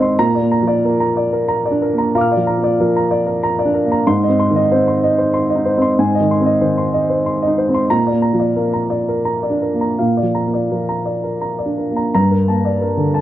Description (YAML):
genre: neoclassical minimalist piano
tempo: 81-95 BPM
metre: 3/4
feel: rubato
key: unclear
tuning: A4 = 438 Hz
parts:
  - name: dark upright piano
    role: solo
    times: 0.0-13.2 s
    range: G2 to F6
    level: -14 LUFS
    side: equal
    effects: none
room: moderate studio ambience, RT60 0.5 s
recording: dark, warm production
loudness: -14 LUFS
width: side -13 dB against mid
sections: 0.0-12.1 A section; 12.1-13.2 B section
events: none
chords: 0.2 Bb; 4.1 Ab; 7.9 Bb; 12.1 Gmadd9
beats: | 0.20 0.84 1.50 | 2.15 2.81 3.44 | 4.08 4.71 5.35 | 5.98 6.62 7.27 | 7.92 8.57 9.26 | 9.99 10.71 11.42 | 12.14 12.81